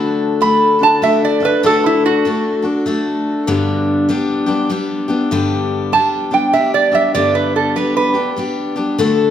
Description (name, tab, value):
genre	country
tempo	98 BPM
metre	3/4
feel	swing 62% on 8ths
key	G major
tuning	A4 = 440 Hz
part	picked steel-string acoustic guitar	accompaniment	0.0-9.3 s	G2 to A4	-16 LUFS	left 3 dB	none
part	lap resonator guitar	melody	0.4-8.3 s	E4 to B5	-15 LUFS	right 4 dB	none
room	wet recital hall reverb, RT60 1.4 s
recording	none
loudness	-13 LUFS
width	side -10 dB against mid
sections	0.0-5.3 A section; 5.3-9.3 A section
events	resonator guitar played with a steel bar solo 0.0-5.3, 5.3-9.3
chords	0.0 D; 3.5 G